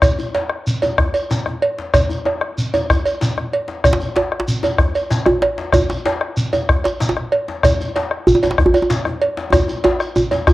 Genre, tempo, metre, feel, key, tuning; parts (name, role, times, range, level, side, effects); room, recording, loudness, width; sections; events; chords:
west african traditional, West African drum ensemble; 126 BPM (dotted quarters); 12/8; straight
bombo; percussion; 0.0-10.5 s; -18 LUFS; left 1 dB
cowbell; percussion; 0.0-10.5 s; -20 LUFS; right 3 dB
djembe; percussion; 0.0-10.5 s; -24 LUFS; left 3 dB
shekere; percussion; 0.0-10.5 s; -23 LUFS; equal
djembe; percussion; 3.9-10.5 s; -16 LUFS; right 1 dB
light reverb, studio ambience; home recording on cassette; -15 LUFS; side -16 dB against mid
0.0-10.5 A section
drum fill 9.5-10.5